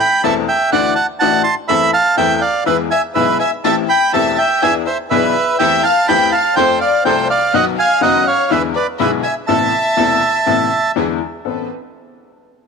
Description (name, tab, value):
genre	tango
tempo	123 BPM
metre	4/4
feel	rubato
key	A minor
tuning	A4 = 441 Hz
part	bandoneon	melody	0.0-10.9 s	B4 to C6	-14 LUFS	right 4 dB	none
part	clear upright piano	accompaniment	0.2-11.7 s	E1 to A4	-19 LUFS	left 12 dB	none
part	warm studio string section	stabs	0.2-11.7 s	E3 to B4	-26 LUFS	right 13 dB	none
part	warm studio violin section	second line	2.7-10.9 s	B4 to G5	-21 LUFS	left 11 dB	none
room	light reverb, small room ambience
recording	1960s-style stereo with parts hard left and right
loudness	-12 LUFS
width	side -5 dB against mid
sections	0.0-11.5 A section; 11.5-12.7 B section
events	none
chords	0.0 Am; 0.7 Dadd9; 1.7 Am/E; 2.7 E; 3.6 Am7; 4.6 E7; 5.6 C6/E; 6.6 F; 7.5 B; 8.5 E7; 9.5 Amadd9; 11.0 E7; 11.5 Amadd9